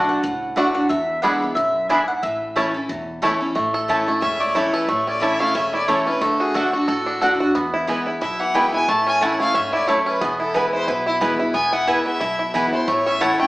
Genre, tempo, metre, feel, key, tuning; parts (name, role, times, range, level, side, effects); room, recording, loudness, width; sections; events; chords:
bluegrass; 180 BPM; 4/4; swing 56% on 8ths; A major; A4 = 439 Hz
mandolin; melody; 0.0-3.2 s; E5 to G#5; -23 LUFS; equal
picked steel-string acoustic guitar; accompaniment; 0.0-13.5 s; E2 to F#4; -25 LUFS; equal
upright bass; bass; 0.0-13.3 s; E1 to E2; -40 LUFS; equal
bluegrass banjo; arpeggios; 0.6-13.5 s; E3 to A4; -21 LUFS; equal
mandolin; stabs; 0.6-13.3 s; A3 to B5; -23 LUFS; right 1 dB
clear fiddle; second line; 4.2-13.5 s; E4 to A5; -23 LUFS; left 1 dB
wet large studio reverb, RT60 1.1 s; band playing live in one room, small speaker sound; -18 LUFS; side -19 dB against mid
0.0-3.6 A section; 3.6-13.5 B section
fiddle solo 3.6-13.5
0.0 D; 0.9 E7; 2.2 A; 6.2 D; 7.5 E; 8.9 A; 10.2 E; 12.9 A